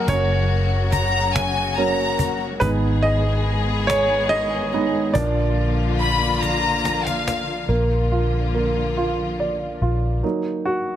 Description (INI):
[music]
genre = six-eight pop ballad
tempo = 47 BPM (dotted quarters)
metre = 6/8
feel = straight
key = unclear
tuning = A4 = 440 Hz
[part]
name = warm grand piano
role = accompaniment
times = 0.0-11.0 s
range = F3 to Eb5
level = -23 LUFS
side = right 2 dB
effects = none
[part]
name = warm studio string section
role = sustained chords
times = 0.0-10.2 s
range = Db3 to Ab4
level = -26 LUFS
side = left 4 dB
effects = none
[part]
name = vintage muted fingered electric bass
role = bass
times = 0.0-10.2 s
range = Gb1 to Bb1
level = -23 LUFS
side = equal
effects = none
[part]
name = cajon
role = drums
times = 0.1-7.5 s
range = none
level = -25 LUFS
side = equal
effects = none
[part]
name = rich studio violin section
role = second line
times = 0.9-7.7 s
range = F5 to Cb6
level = -22 LUFS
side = left 3 dB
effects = none
[sound]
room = little or no reverb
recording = none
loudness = -18 LUFS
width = side -11 dB against mid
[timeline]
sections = 0.0-7.7 A section; 7.7-10.2 B section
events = grand piano solo 0.0-7.7; drum fill 6.4-7.7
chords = 0.1 Gb; 2.6 Abm; 5.2 Bb; 10.2 Ebm